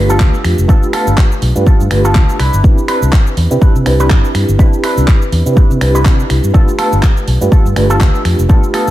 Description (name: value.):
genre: filtered disco house.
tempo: 123 BPM.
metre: 4/4.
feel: swing 56% on 16ths.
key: C major.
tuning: A4 = 440 Hz.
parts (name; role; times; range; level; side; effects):
mellow reed electric piano; accompaniment; 0.0-8.9 s; A3 to B4; -16 LUFS; right 1 dB; fast tremolo, phaser, sidechain pumping, low-pass filter.
fingered electric bass; bass; 0.0-8.9 s; F1 to C3; -13 LUFS; equal; sidechain pumping, low-pass filter.
electric guitar with an envelope filter; riff; 0.1-8.9 s; B3 to B4; -20 LUFS; right 1 dB; analog chorus, sidechain pumping, low-pass filter.
house drum kit; drums; 0.1-8.9 s; finger snaps, handclaps, hi-hat, shaker; -21 LUFS; right 1 dB; sidechain pumping on hats, sidechain pumping on perc.
electronic kick drum; drums; 0.2-8.6 s; none; -9 LUFS; equal; none.
room: digital ambience.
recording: none.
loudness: -9 LUFS.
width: side -15 dB against mid.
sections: 0.0-8.9 A section.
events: none.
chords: 0.0 G9; 2.4 Cmaj9; 6.5 G9.